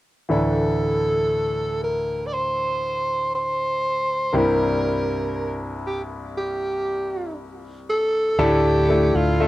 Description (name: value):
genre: pop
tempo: 59 BPM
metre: 4/4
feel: straight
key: unclear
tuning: A4 = 441 Hz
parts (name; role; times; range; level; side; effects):
- raspy alto saxophone; melody; 0.3-9.5 s; F4 to D5; -22 LUFS; right 1 dB; cassette tape, plate reverb
- clear concert grand piano; accompaniment; 0.3-9.5 s; C2 to E5; -24 LUFS; left 1 dB; plate reverb
- fingered electric bass; bass; 8.4-9.5 s; D2; -22 LUFS; equal; none
room: wet booth ambience, RT60 0.2 s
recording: home recording on cassette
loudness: -20 LUFS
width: side -16 dB against mid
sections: 0.3-8.4 A section; 8.4-9.5 B section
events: none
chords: 0.3 Dsus2; 4.3 C7; 8.4 Dsus2